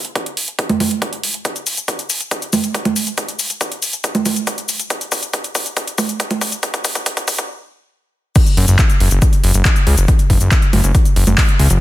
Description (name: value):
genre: uplifting trance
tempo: 139 BPM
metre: 4/4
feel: straight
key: unclear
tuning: A4 = 440 Hz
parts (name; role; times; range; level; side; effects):
- big-room dance drum kit; drums; 0.0-11.8 s; congas, crash cymbal, handclaps, hi-hat, shaker; -19 LUFS; right 2 dB; overdrive, studio ambience
- electronic kick drum; drums; 0.2-11.5 s; none; -16 LUFS; equal; overdrive, high-pass filter on kick, studio ambience, high-pass filter on room
- fat analog bass; bass; 8.6-11.8 s; F#1 to C#2; -12 LUFS; equal; sidechain pumping
room: digital ambience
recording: dense, heavily limited modern master, high-pass filter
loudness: -14 LUFS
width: side -15 dB against mid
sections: 0.0-8.4 A section; 8.4-11.8 B section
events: build-up 0.0-8.4; drum fill 1.4-7.5; stop 7.5-8.4; drop 8.4-11.8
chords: none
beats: 0.15 0.59 1.02 | 1.45 1.88 2.31 2.75 | 3.18 3.61 4.04 4.47 | 4.90 5.33 5.77 6.20 | 6.63 7.06 7.49 7.92 | 8.36 8.79 9.22 9.65 | 10.08 10.52 10.95 11.38